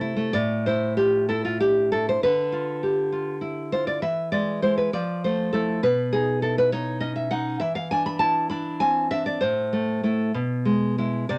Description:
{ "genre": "romantic piece for solo classical guitar", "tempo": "66 BPM (dotted quarters)", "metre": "6/8", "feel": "rubato", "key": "A minor", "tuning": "A4 = 441 Hz", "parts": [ { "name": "nylon-string guitar", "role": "solo", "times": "0.0-11.4 s", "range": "A2 to B5", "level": "-24 LUFS", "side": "equal", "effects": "none" } ], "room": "moderate studio reverb, RT60 0.5 s", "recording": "none", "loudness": "-24 LUFS", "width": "mono", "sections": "0.3-11.4 A section", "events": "none", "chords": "0.3 A5; 2.2 Bdim/D; 4.0 E; 4.9 Fmaj7; 5.8 B; 7.6 E7b13; 9.4 Am; 10.3 E/B" }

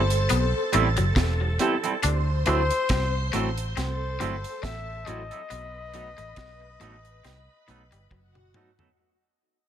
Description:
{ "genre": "lovers rock reggae", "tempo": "69 BPM", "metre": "4/4", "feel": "swing 56% on 16ths", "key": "unclear", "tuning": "A4 = 439 Hz", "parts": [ { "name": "breathy flugelhorn", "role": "melody", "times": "0.0-8.1 s", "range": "C5 to E5", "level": "-32 LUFS", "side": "left 2 dB", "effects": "tape echo" }, { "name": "phased string machine", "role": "second line", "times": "0.0-9.0 s", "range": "F#4 to C6", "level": "-33 LUFS", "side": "right 1 dB", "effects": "ensemble chorus, phaser" }, { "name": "twangy electric guitar", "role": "riff", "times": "0.0-8.4 s", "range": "E3 to D4", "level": "-32 LUFS", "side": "left 7 dB", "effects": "tape echo" }, { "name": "vintage muted fingered electric bass", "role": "bass", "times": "0.0-8.5 s", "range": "E1 to D2", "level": "-26 LUFS", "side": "right 1 dB", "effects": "none" }, { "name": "deep reggae drum kit", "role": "drums", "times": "0.1-9.0 s", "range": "hi-hat, kick drum, snare drum, toms", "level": "-29 LUFS", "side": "right 1 dB", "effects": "tape echo" }, { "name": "tine electric piano", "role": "accompaniment", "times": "0.7-8.7 s", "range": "A3 to G4", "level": "-32 LUFS", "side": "left 1 dB", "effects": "phaser, tape echo" }, { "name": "twangy electric guitar", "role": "stabs", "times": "0.7-8.9 s", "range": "F#3 to A4", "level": "-29 LUFS", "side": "right 7 dB", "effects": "lush chorus" } ], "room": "light reverb", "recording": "none", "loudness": "-22 LUFS", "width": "side -10 dB against mid", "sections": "0.0-9.0 A section", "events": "fade-out 0.0-9.0; drum fill 8.1-9.0", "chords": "0.0 Am7; 2.0 D9; 5.5 B7" }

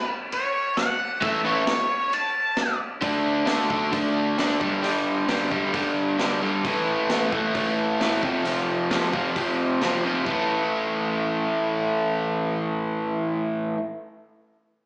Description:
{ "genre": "garage rock duo or trio", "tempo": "133 BPM", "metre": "4/4", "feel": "straight", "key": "unclear", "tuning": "A4 = 439 Hz", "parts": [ { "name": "octave-fuzz lead guitar", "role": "melody", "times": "0.0-2.8 s", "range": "C#5 to A5", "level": "-24 LUFS", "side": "equal", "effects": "distortion" }, { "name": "vintage drum kit", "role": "drums", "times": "0.3-10.4 s", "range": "crash cymbal, hi-hat, kick drum, snare drum", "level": "-29 LUFS", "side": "equal", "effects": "none" }, { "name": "overdriven electric guitar", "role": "riff", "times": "1.2-13.8 s", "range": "F2 to D4", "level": "-22 LUFS", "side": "equal", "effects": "spring reverb, slapback echo" } ], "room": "moderate plate reverb, RT60 1.1 s, studio reverb", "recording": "live gig heard through the venue's PA, club reverb, small speaker sound", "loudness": "-21 LUFS", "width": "side -30 dB against mid", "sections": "0.0-3.0 A section; 3.0-10.3 B section; 10.3-13.9 C section", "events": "none", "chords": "0.0 A; 3.0 D5; 4.6 G5; 6.6 A5; 8.2 F5; 10.3 A5" }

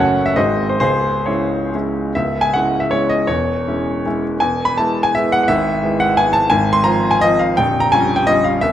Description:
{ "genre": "classical, romantic triple-time dance for piano with dotted rhythms", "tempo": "122-191 BPM", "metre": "3/4", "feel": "rubato", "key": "C# minor", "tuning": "A4 = 440 Hz", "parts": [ { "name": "clear grand piano", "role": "solo", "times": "0.0-8.7 s", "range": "Bb0 to C6", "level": "-14 LUFS", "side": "equal", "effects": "none" } ], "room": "moderate recital hall reverb, RT60 1.3 s", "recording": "none", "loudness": "-14 LUFS", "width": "side -11 dB against mid", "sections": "0.0-2.2 A section; 2.2-8.7 A section", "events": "none", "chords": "0.4 G#7; 0.8 C#m; 3.3 C#m/E; 4.4 E; 5.5 E/G#; 6.5 Fm/Ab; 7.6 Gm7b5/Bb" }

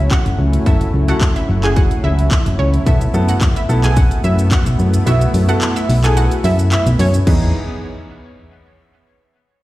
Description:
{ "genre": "dance-pop", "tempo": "109 BPM", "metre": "4/4", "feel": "straight", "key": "E major", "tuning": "A4 = 440 Hz", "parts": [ { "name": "warm analog pad", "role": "sustained chords", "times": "0.0-7.5 s", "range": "E3 to G#4", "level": "-24 LUFS", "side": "equal", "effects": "chorus, sidechain pumping, plate reverb" }, { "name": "solid FM bass", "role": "bass", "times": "0.0-7.5 s", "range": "F#1 to F#2", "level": "-14 LUFS", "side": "equal", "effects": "sidechain pumping" }, { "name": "analog pluck", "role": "melody", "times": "0.1-7.5 s", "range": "B3 to G#5", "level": "-22 LUFS", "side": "right 1 dB", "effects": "chorus, sidechain pumping, plate reverb, slapback echo, ping-pong delay" }, { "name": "house drum kit", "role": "drums", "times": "0.1-7.4 s", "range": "crash cymbal, handclaps, hi-hat, kick drum, shaker", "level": "-17 LUFS", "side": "equal", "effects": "none" }, { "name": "clear baby grand piano", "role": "accompaniment", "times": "0.7-7.5 s", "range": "B3 to A4", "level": "-24 LUFS", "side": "right 1 dB", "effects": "sidechain pumping, plate reverb, slapback echo" } ], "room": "light reverb", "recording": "live gig heard through the venue's PA, recital hall reverb", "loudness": "-12 LUFS", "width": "side -17 dB against mid", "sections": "0.0-7.3 A section; 7.3-9.5 B section", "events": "kick muted 5.1-7.3", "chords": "0.0 F#m7; 2.9 B7sus4; 7.3 Emaj7" }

